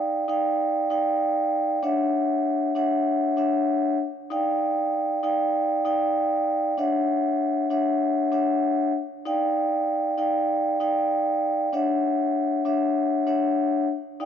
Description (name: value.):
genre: hip hop.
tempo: 97 BPM.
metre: 4/4.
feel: swing 59% on 16ths.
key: unclear.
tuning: A4 = 440 Hz.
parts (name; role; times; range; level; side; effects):
vibraphone with soft mallets; solo; 0.0-14.3 s; D4 to G5; -22 LUFS; equal; high-pass filter, low-pass filter.
room: moderate echo chamber reverb, RT60 2.5 s.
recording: dark, warm production.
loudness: -22 LUFS.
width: side -8 dB against mid.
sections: 0.0-14.3 A section.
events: none.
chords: 0.0 Ebmaj9; 1.8 Dmaj9; 4.3 Ebmaj9; 6.8 Dmaj9; 9.3 Ebmaj9; 11.7 Dmaj9.